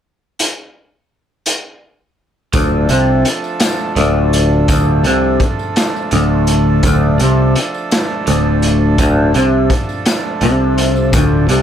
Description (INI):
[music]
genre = psychedelic rock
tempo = 56 BPM (dotted quarters)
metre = 6/8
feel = straight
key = D minor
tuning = A4 = 440 Hz
[part]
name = raw garage drum kit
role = drums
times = 0.4-11.6 s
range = hi-hat, kick drum, snare drum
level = -18 LUFS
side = equal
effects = none
[part]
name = pedal harmonium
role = sustained chords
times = 2.5-11.6 s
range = F3 to A4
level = -22 LUFS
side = right 4 dB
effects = none
[part]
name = twangy electric guitar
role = riff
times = 2.5-11.6 s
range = D2 to C3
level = -13 LUFS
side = equal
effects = flanger, double-tracked left and right
[part]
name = picked electric bass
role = bass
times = 2.5-11.6 s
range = D1 to C2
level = -17 LUFS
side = equal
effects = none
[part]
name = tambourine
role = percussion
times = 2.5-11.6 s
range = none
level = -31 LUFS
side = left 10 dB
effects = none
[sound]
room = light reverb, small room ambience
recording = none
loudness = -12 LUFS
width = side -9 dB against mid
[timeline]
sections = 0.4-2.5 A section; 2.5-11.6 B section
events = none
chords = 0.4 N.C.; 2.5 Dm